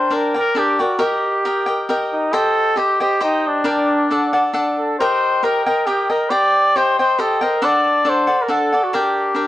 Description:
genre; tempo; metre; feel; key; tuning
mexican folk, mariachi; 136 BPM; 3/4; straight; G harmonic minor; A4 = 440 Hz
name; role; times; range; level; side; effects
warm trumpet; melody; 0.0-9.5 s; D4 to D5; -17 LUFS; equal; none
cavaquinho; accompaniment; 0.0-9.5 s; D4 to G5; -19 LUFS; left 1 dB; none
room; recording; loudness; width
moderate spring reverb, RT60 1.7 s, small room ambience; home recording on cassette; -15 LUFS; side -14 dB against mid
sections
0.0-9.5 A section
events
none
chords
0.0 Gm; 1.0 Eb; 2.3 Cm; 3.7 Gm/D; 4.1 D; 5.0 Eb; 6.3 Cm; 7.6 D; 8.9 Gm

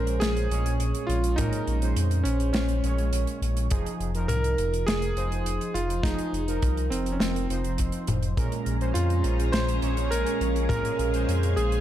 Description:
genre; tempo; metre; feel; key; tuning
synthwave; 103 BPM; 4/4; straight; Bb minor; A4 = 439 Hz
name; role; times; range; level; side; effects
clear electric grand piano; melody; 0.0-11.8 s; C4 to C5; -30 LUFS; right 1 dB; ping-pong delay
analog synth brass; stabs; 0.0-11.8 s; Bb2 to Db5; -32 LUFS; right 3 dB; chorus, ping-pong delay
dark detuned saw bass; bass; 0.0-11.8 s; F1 to F2; -27 LUFS; equal; none
modern studio drum kit; drums; 0.1-11.8 s; hi-hat, snare drum, toms; -32 LUFS; left 1 dB; none
kick drum; drums; 1.4-10.8 s; none; -27 LUFS; equal; none
string machine, full ensemble; sustained chords; 8.4-11.8 s; Db4 to Bb5; -31 LUFS; equal; ensemble chorus, sidechain pumping
room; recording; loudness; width
light reverb, studio ambience; dark, warm production; -23 LUFS; side -12 dB against mid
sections
0.0-11.8 A section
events
none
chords
0.0 Bbm7; 3.7 Fm7; 8.4 Bbm7

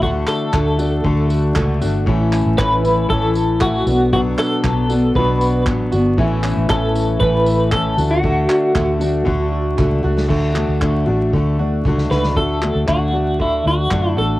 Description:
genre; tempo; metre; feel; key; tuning
acoustic pop; 117 BPM; 4/4; straight; D major; A4 = 442 Hz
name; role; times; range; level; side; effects
twelve-string electric guitar; melody; 0.0-14.4 s; E4 to B4; -19 LUFS; equal; tremolo
fingerpicked steel-string acoustic guitar; accompaniment; 0.0-14.4 s; A2 to F#4; -20 LUFS; left 3 dB; cassette tape
flamenco guitar; arpeggios; 0.0-14.4 s; E3 to A4; -25 LUFS; right 5 dB; cassette tape, analog delay
vintage muted fingered electric bass; bass; 0.0-14.4 s; G1 to F#2; -19 LUFS; equal; none
unplugged drum kit; drums; 0.0-14.0 s; crash cymbal, handclaps, kick drum, snare drum, tambourine; -24 LUFS; equal; cassette tape
group handclap; percussion; 0.5-9.9 s; none; -34 LUFS; right 5 dB; none
room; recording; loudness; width
light reverb; home recording on cassette, vinyl crackle; -14 LUFS; side -17 dB against mid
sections
0.0-10.3 A section; 10.3-12.4 B section; 12.4-14.4 C section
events
drum fill 9.3-10.3, 11.8-12.4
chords
0.0 D; 2.1 A; 3.9 Bm; 6.2 A; 8.0 D

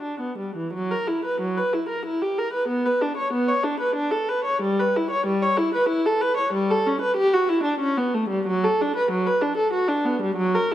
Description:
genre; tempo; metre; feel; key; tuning
classical, baroque-style suite movement for unaccompanied viola; 94 BPM; 3/4; rubato; D major; A4 = 440 Hz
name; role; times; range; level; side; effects
warm viola; solo; 0.0-10.7 s; E3 to C#5; -20 LUFS; equal; none
room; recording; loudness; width
moderate scoring stage reverb, RT60 2.0 s; none; -20 LUFS; side -12 dB against mid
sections
0.7-10.7 A section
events
none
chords
none

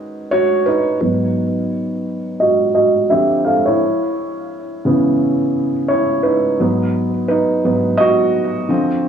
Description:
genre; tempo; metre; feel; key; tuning
hip hop; 86 BPM; 4/4; swing 60% on 16ths; G# minor; A4 = 440 Hz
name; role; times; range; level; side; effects
felt-muted upright piano; solo; 0.0-9.1 s; G#2 to F5; -14 LUFS; right 1 dB; cassette tape, low-pass filter, tape echo
room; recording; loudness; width
moderate small room ambience, RT60 0.5 s; cassette tape, small room ambience; -14 LUFS; side -8 dB against mid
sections
0.0-1.0 A section; 1.0-9.1 B section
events
felt piano solo 1.0-9.1; filter sweep on felt piano 1.0-9.1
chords
0.0 G#m7; 3.1 Dm11; 3.8 C#m9; 6.6 G#m7

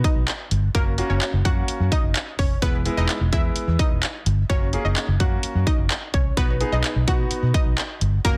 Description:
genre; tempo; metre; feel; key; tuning
dance-pop; 128 BPM; 4/4; straight; B major; A4 = 442 Hz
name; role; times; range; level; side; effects
analog pluck; melody; 0.0-8.4 s; A#3 to F#5; -32 LUFS; equal; chorus, digital delay
clear concert grand piano; accompaniment; 0.0-8.4 s; G#3 to G#4; -32 LUFS; equal; sidechain pumping
pop drum kit; drums; 0.0-8.4 s; handclaps, hi-hat, kick drum; -25 LUFS; equal; none
vintage muted fingered electric bass; bass; 0.2-8.4 s; E1 to B2; -25 LUFS; equal; sidechain pumping
room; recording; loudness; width
light reverb, digital ambience; dense, heavily limited modern master; -22 LUFS; mono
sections
0.0-8.4 A section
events
none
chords
0.0 B; 0.7 F#; 2.6 E; 4.5 F#; 6.4 B

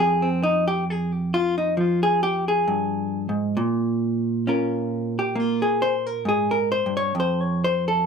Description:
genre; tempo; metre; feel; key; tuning
solo jazz; 67 BPM; 4/4; swing 68% on 8ths; F minor; A4 = 439 Hz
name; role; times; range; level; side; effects
vintage hollow-body jazz guitar; solo; 0.0-8.1 s; F2 to Db5; -20 LUFS; equal; none
room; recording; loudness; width
moderate club reverb, RT60 0.7 s; minimal, uncompressed stereo recording; -20 LUFS; side -6 dB against mid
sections
0.0-8.1 A section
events
hollow-body jazz guitar solo 0.0-8.1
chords
0.0 Fm; 3.6 Bbm7; 7.2 F5

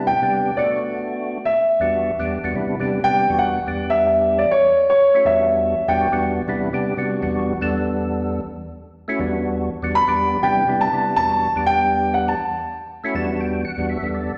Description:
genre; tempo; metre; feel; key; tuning
jazz; 122 BPM; 4/4; swing 55% on 16ths; E minor; A4 = 440 Hz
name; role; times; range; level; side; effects
dark grand piano; melody; 0.0-6.2, 10.0-12.7 s; C#5 to B5; -20 LUFS; equal; slapback echo
percussive tonewheel organ; accompaniment; 0.0-14.4 s; E2 to A5; -25 LUFS; equal; slow rotary speaker, chorus vibrato, slapback echo
room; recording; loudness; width
wet club reverb, RT60 0.6 s; live gig heard through the venue's PA, recital hall reverb; -20 LUFS; mono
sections
0.0-2.5 A section; 2.5-14.4 B section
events
tonewheel organ fill 12.9-14.4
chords
0.0 Cmaj7; 0.6 Bm7; 1.6 Em9; 2.5 Cmaj9; 3.3 Em9; 4.5 F#m7; 5.3 Em9; 6.5 Cmaj9; 7.2 Em9; 8.5 F#m7; 9.2 Em9; 10.4 Cmaj9; 11.2 Em9; 12.4 F#m7; 13.1 Em9

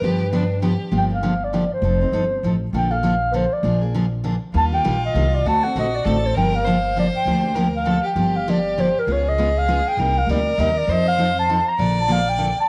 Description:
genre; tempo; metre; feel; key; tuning
acoustic string swing (jazz manouche); 199 BPM; 3/4; swing 57% on 8ths; G minor; A4 = 442 Hz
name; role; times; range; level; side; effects
breathy clarinet; melody; 0.0-12.7 s; Bb4 to Bb5; -24 LUFS; equal; none
warm violin; second line; 0.0-0.9, 4.5-12.7 s; D4 to D5; -30 LUFS; equal; none
picked steel-string acoustic guitar; accompaniment; 0.0-12.5 s; C3 to A4; -25 LUFS; equal; none
upright bass; bass; 0.0-12.5 s; F1 to G2; -26 LUFS; equal; none
room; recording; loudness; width
moderate echo chamber reverb, RT60 1.4 s, studio reverb; none; -20 LUFS; mono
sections
0.9-8.2 A section; 8.2-12.7 B section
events
none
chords
0.0 G7; 0.9 Gm7; 1.8 F7; 2.7 Bbmaj7; 3.6 Bb7; 4.5 Ebmaj7; 5.4 D7; 6.4 Gm7; 9.1 C#9; 10.0 Cm7; 10.9 F7; 11.8 Bbmaj7

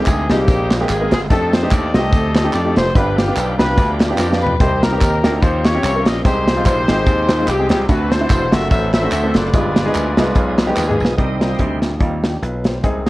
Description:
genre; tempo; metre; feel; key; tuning
uptempo gospel; 146 BPM; 4/4; swing 55% on 8ths; unclear; A4 = 439 Hz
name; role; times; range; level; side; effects
clear horn section; melody; 0.0-11.0 s; Bb3 to E5; -20 LUFS; left 1 dB; none
warm upright piano; accompaniment; 0.0-13.1 s; G2 to C5; -21 LUFS; equal; none
bright tonewheel organ; sustained chords; 0.0-13.1 s; D3 to Bb4; -29 LUFS; right 2 dB; none
slap bass; bass; 0.1-13.1 s; E1 to F2; -20 LUFS; equal; none
modern studio drum kit; drums; 0.1-13.1 s; hi-hat, kick drum, snare drum, toms; -17 LUFS; equal; none
handclaps and tambourine; percussion; 0.1-11.1 s; none; -30 LUFS; right 2 dB; none
room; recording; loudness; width
light reverb, small room ambience; worn, warbling old tape, cassette tape, warbly pitch drift; -13 LUFS; side -18 dB against mid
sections
0.0-11.2 A section; 11.2-13.1 B section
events
drum fill 4.2-4.6, 10.8-11.2; tonewheel organ solo 11.2-13.1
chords
0.0 Abmaj9/C; 1.3 F13; 3.0 G7; 4.6 Cm7; 5.4 Eb13; 6.2 Abmaj7; 7.9 D7; 9.5 G7b9b13; 11.2 Cm

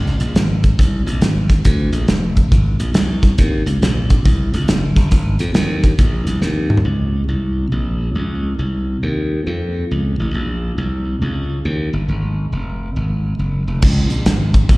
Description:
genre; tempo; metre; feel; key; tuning
uptempo gospel; 138 BPM; 4/4; swing 64% on 8ths; unclear; A4 = 436 Hz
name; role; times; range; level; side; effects
glassy slap bass; bass; 0.0-14.8 s; F1 to F2; -17 LUFS; equal; none
warm soul drum kit; drums; 0.1-6.8, 13.8-14.8 s; crash cymbal, hi-hat, kick drum, snare drum, toms; -15 LUFS; equal; none
room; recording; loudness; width
little or no reverb; live gig heard through the venue's PA, recital hall reverb, lossy compression artefacts; -15 LUFS; side -22 dB against mid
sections
0.0-6.9 A section; 6.9-13.8 B section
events
drum fill 6.4-6.9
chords
none

